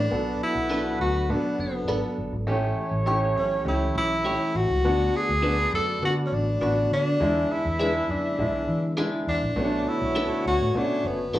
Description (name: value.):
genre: soul.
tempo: 102 BPM.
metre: 4/4.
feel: straight.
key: unclear.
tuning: A4 = 436 Hz.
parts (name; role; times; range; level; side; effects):
warm tenor saxophone; melody; 0.0-11.4 s; B3 to A4; -26 LUFS; left 1 dB; none.
percussive tonewheel organ; sustained chords; 0.0-11.4 s; D3 to A4; -34 LUFS; equal; chorus vibrato, slow rotary speaker.
vintage muted fingered electric bass; bass; 0.0-11.4 s; F#1 to E3; -28 LUFS; equal; none.
mellow horn section; second line; 0.1-11.4 s; A3 to E5; -33 LUFS; right 2 dB; none.
clear upright piano; accompaniment; 0.1-11.4 s; G#3 to A4; -29 LUFS; equal; none.
clean electric guitar; stabs; 0.7-11.4 s; D4 to C#5; -30 LUFS; right 2 dB; phaser.
room: wet large studio reverb, RT60 0.8 s.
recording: band playing live in one room, small room ambience.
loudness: -22 LUFS.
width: side -14 dB against mid.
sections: 0.1-11.4 A section.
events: none.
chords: 0.1 Bm7; 2.5 A7; 4.8 D6; 7.2 E7; 9.6 Bm7.